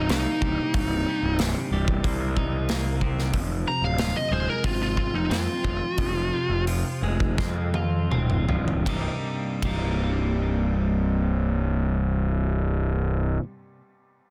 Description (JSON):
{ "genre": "quiet-loud alternative rock", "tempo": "79-92 BPM", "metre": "4/4", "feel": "straight", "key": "C minor", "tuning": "A4 = 440 Hz", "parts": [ { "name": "fuzz lead guitar", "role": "melody", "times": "0.0-6.6 s", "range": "Eb4 to Bb5", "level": "-30 LUFS", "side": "equal", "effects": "distortion, digital delay" }, { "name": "twelve-string electric guitar", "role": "arpeggios", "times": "0.0-13.4 s", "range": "C2 to F4", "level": "-33 LUFS", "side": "equal", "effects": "vibrato effect, digital delay" }, { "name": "fuzz picked electric bass", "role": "bass", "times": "0.0-13.4 s", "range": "C1 to F2", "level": "-28 LUFS", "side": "equal", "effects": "overdrive" }, { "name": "big rock drum kit", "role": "drums", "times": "0.1-9.8 s", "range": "hi-hat, kick drum, ride cymbal, snare drum, toms", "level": "-31 LUFS", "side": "equal", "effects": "none" } ], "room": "light reverb", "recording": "dense, heavily limited modern master", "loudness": "-25 LUFS", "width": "mono", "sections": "0.0-8.9 A section; 8.9-11.9 B section", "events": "lead electric guitar solo 0.0-8.9; slowing down 3.3-8.9; drum fill 7.4-8.9", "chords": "0.0 Cm7; 3.3 Fm; 8.9 Cm7", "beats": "0.09 | 0.74 1.39 2.04 2.69 | 3.34 3.99 4.64 5.31 | 5.99 6.67 7.38 8.11 | 8.86 9.62 10.38 11.14" }